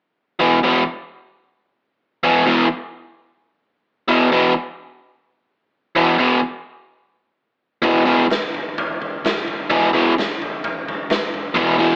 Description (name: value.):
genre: garage rock duo or trio.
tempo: 129 BPM.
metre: 4/4.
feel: straight.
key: unclear.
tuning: A4 = 445 Hz.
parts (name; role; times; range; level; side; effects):
biting overdriven guitar; riff; 0.4-12.0 s; E2 to E3; -17 LUFS; equal; spring reverb.
raw garage drum kit; drums; 7.8-11.9 s; kick drum, snare drum, toms; -24 LUFS; equal; none.
room: moderate studio reverb, RT60 0.6 s.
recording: AM radio sound.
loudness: -19 LUFS.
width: mono.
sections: 0.4-12.0 A section.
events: none.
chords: 0.4 E5.